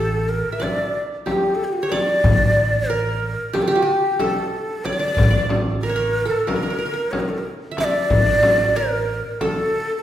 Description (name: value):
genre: Turkish makam ensemble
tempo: 184 BPM (eighths)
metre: 9/8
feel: straight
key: A makam hicaz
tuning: A4 = 440 Hz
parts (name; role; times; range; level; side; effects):
- breathy ney; melody; 0.0-10.0 s; F#4-38c to E5; -21 LUFS; equal; none
- qanun; second line; 0.0-10.0 s; F#4-40c to E5; -25 LUFS; right 1 dB; none
- upright bass; bass; 0.0-9.2 s; A1; -24 LUFS; right 2 dB; none
- darbuka; percussion; 0.6-9.6 s; none; -26 LUFS; left 3 dB; none
- frame drum; percussion; 0.6-9.6 s; none; -25 LUFS; left 1 dB; none
room: wet recital hall reverb, RT60 1.7 s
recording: recorded in a church or concert hall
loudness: -18 LUFS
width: side -11 dB against mid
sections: 0.0-10.0 A section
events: none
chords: none